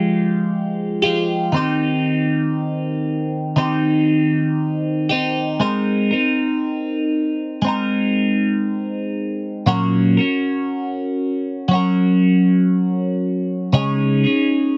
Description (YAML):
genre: pop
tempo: 59 BPM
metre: 4/4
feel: straight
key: Ab major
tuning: A4 = 436 Hz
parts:
  - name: twelve-string electric guitar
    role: solo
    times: 0.0-14.8 s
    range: Bb2 to Bb4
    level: -19 LUFS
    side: equal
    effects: phaser
room: light reverb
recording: dry, close 1970s-style studio recording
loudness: -19 LUFS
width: mono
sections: 0.0-5.6 A section; 5.6-14.8 B section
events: none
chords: 0.0 Fmadd9; 1.5 Cm/Eb; 5.6 Abadd9; 9.7 Gb/Bb; 13.7 Dbsus2